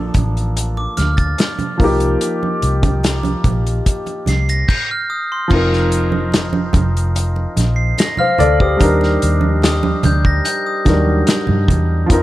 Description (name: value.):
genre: lush 1970s-style soul.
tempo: 73 BPM.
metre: 4/4.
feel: straight.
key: unclear.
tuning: A4 = 440 Hz.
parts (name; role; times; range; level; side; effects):
warm baby grand piano; accompaniment; 0.0-12.2 s; F3 to F5; -19 LUFS; left 1 dB; none.
vintage muted fingered electric bass; bass; 0.0-12.2 s; F1 to G2; -17 LUFS; equal; none.
warm soul drum kit; drums; 0.1-12.2 s; crash cymbal, hi-hat, kick drum, snare drum; -18 LUFS; equal; none.
congas; percussion; 0.1-11.9 s; none; -23 LUFS; right 5 dB; none.
glockenspiel with brass mallets; texture; 0.8-11.9 s; C6 to C7; -23 LUFS; right 1 dB; none.
room: small room ambience.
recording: none.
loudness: -14 LUFS.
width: side -15 dB against mid.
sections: 0.0-5.5 A section; 5.5-12.2 B section.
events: none.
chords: 0.0 Bbmaj7; 1.8 F9sus4; 5.5 F7sus4; 8.8 Ebmaj7.